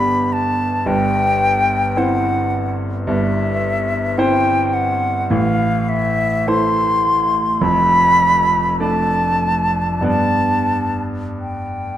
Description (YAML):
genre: classical, romantic duo for flute and grand piano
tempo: 45-54 BPM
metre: 4/4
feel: rubato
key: unclear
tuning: A4 = 441 Hz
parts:
  - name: mellow silver concert flute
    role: melody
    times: 0.0-12.0 s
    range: E5 to C6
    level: -17 LUFS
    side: left 1 dB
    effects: none
  - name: bright grand piano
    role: accompaniment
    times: 0.0-12.0 s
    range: F1 to D5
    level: -18 LUFS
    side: right 1 dB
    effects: none
room: moderate concert hall reverb, RT60 1.9 s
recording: close, detailed microphones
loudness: -15 LUFS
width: side -11 dB against mid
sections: 0.0-12.0 A section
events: none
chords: 0.0 G; 0.9 C/G; 5.3 Am; 7.6 Dm/F; 10.1 G